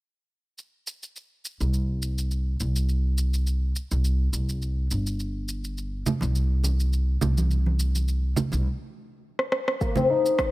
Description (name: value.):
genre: organic downtempo.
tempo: 104 BPM.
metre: 4/4.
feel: swing 55% on 16ths.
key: C minor.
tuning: A4 = 439 Hz.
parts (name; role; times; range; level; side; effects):
electronic shaker and rim click; drums; 0.6-10.5 s; none; -30 LUFS; equal; overdrive.
upright bass; bass; 1.6-8.7 s; G1 to C2; -24 LUFS; equal; sidechain pumping.
congas; percussion; 6.1-10.1 s; none; -28 LUFS; right 3 dB; none.
oud; arpeggios; 9.8-10.5 s; Bb3 to Eb4; -21 LUFS; left 4 dB; low-pass filter.
electronic kick drum; drums; 9.8-10.5 s; none; -28 LUFS; equal; overdrive.
room: studio reverb.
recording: none.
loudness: -23 LUFS.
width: side -18 dB against mid.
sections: 0.6-9.8 A section.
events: filter sweep on upright bass 0.6-9.8; stop 8.7-9.8; drum fill 9.4-9.8.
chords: 0.6 C5; 9.8 Cm7.